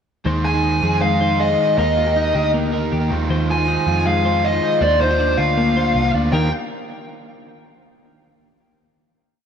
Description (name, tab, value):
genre	indie pop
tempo	158 BPM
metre	4/4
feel	straight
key	Eb major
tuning	A4 = 441 Hz
part	crunchy overdriven guitar	accompaniment	0.2-6.5 s	Eb3 to C5	-26 LUFS	right 6 dB	none
part	twelve-string electric guitar	arpeggios	0.3-6.5 s	Eb3 to C5	-22 LUFS	left 2 dB	none
part	vintage muted picked electric bass	bass	0.3-6.5 s	C2 to F2	-22 LUFS	equal	none
part	fuzz lead guitar	melody	0.4-6.5 s	C5 to Ab5	-19 LUFS	equal	distortion
room	wet lush hall reverb, RT60 2.8 s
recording	rough home demo mix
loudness	-15 LUFS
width	side -7 dB against mid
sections	0.3-6.3 pre-chorus; 6.3-7.8 final chord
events	none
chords	0.3 Ab/Eb; 1.8 Eb; 3.1 Fm/Eb; 4.8 Bbadd9; 6.3 Eb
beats	| 0.26 0.64 1.02 1.41 | 1.79 2.17 2.55 2.93 | 3.31 3.68 4.06 4.44 | 4.82 5.20 5.57 5.95 | 6.33